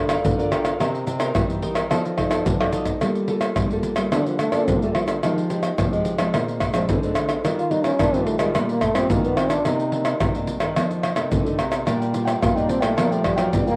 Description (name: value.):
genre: samba and choro.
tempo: 108 BPM.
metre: 4/4.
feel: straight.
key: G minor from 3.0 s.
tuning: A4 = 440 Hz.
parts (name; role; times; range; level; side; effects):
nylon-string guitar; accompaniment; 0.0-13.8 s; F2 to Eb5; -30 LUFS; equal; cassette tape.
nylon-string guitar; bass; 0.0-13.8 s; Bb2 to G3; -29 LUFS; equal; none.
cavaquinho; accompaniment; 0.1-3.0, 11.9-13.8 s; D4 to G5; -32 LUFS; equal; cassette tape.
egg shaker, pandeiro, tamborim and surdo; percussion; 0.1-13.8 s; none; -25 LUFS; equal; none.
breathy trombone; second line; 4.1-13.8 s; D3 to F4; -26 LUFS; equal; cassette tape.
room: moderate spring reverb, RT60 1.6 s, small room ambience.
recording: home recording on cassette.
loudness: -22 LUFS.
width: mono.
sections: 0.0-3.0 A section; 3.0-13.8 B section.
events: drum fill 2.6-3.0; trombone solo 3.0-13.8.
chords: 0.0 Gm7; 0.8 Cm7; 1.9 F6; 3.0 Gm9; 5.2 Fm9; 6.3 Bb9; 7.4 Ebmaj9; 9.7 Cm9; 10.8 F6; 11.9 Bb6.